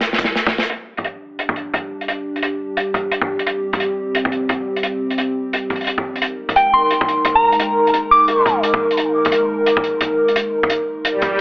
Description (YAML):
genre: half-time drum and bass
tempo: 174 BPM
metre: 4/4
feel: swing 60% on 16ths, half-time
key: G phrygian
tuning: A4 = 440 Hz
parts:
  - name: crunchy breakbeat drum kit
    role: drums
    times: 0.0-11.3 s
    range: hi-hat, snare drum, toms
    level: -20 LUFS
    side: equal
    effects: low-pass filter on toms, low-pass filter on hats, low-pass filter on snare, low-pass filter on room
  - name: dark analog pad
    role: sustained chords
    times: 1.2-11.4 s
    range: G3 to Bb4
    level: -19 LUFS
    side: equal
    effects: chorus
  - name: soft synth bell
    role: melody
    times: 6.6-8.5 s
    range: G5 to D6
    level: -15 LUFS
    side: equal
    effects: chorus, dub echo
  - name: swell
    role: sound effects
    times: 11.1-11.4 s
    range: none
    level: -17 LUFS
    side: equal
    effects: none
room: wet digital room reverb, RT60 0.9 s, small room ambience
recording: telephone sound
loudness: -15 LUFS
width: side -26 dB against mid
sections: 0.7-11.4 A section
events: drum fill 0.0-0.7; swell 11.1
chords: 0.0 Ab (rootless); 0.7 G5; 6.2 Ab5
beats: 0.01 0.36 | 0.70 1.05 1.39 1.74 | 2.08 2.43 2.77 3.12 | 3.46 3.81 4.15 4.50 | 4.84 5.18 5.53 5.87 | 6.22 6.56 6.91 7.25 | 7.60 7.94 8.29 8.63 | 8.98 9.32 9.67 10.01 | 10.36 10.70 11.05 11.39